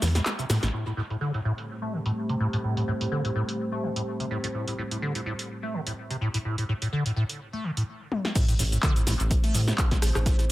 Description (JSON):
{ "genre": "acid house", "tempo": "126 BPM", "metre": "4/4", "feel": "swing 55% on 16ths", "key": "A minor pentatonic", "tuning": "A4 = 441 Hz", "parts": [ { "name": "liquid acid bass", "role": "riff", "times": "0.0-10.4 s", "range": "A2 to A3", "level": "-29 LUFS", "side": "equal", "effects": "phaser, analog chorus, cassette tape, dub echo" }, { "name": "round analog bass", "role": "bass", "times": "0.0-0.7, 8.6-10.3 s", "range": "A1 to A2", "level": "-25 LUFS", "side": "equal", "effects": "sidechain pumping" }, { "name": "punchy analog drum machine", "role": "drums", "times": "0.0-10.5 s", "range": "crash cymbal, handclaps, hi-hat, rim click, shaker, snare drum, toms", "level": "-30 LUFS", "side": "equal", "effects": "low-pass filter on perc, low-pass filter on hats, low-pass filter on snare, low-pass filter on toms, low-pass filter on cymbals, dub echo" }, { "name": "dark analog pad", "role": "sustained chords", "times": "0.7-10.5 s", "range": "A3 to C5", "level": "-34 LUFS", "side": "equal", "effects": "chorus, sidechain pumping" }, { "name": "electronic kick drum", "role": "drums", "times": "8.4-10.4 s", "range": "none", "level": "-24 LUFS", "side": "equal", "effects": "none" } ], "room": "light reverb", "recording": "echo-heavy mix", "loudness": "-25 LUFS", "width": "side -16 dB against mid", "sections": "0.7-8.4 A section; 8.4-10.5 B section", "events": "break 0.0-0.7; drum fill 0.0-0.7, 8.1; drop 8.4-10.5", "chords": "0.0 A5; 0.7 Am7", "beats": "0.26 | 0.74 1.21 1.69 2.17 | 2.64 3.12 3.59 4.07 | 4.55 5.02 5.50 5.97 | 6.45 6.93 7.40 7.88 | 8.36 8.83 9.31 9.78 | 10.26" }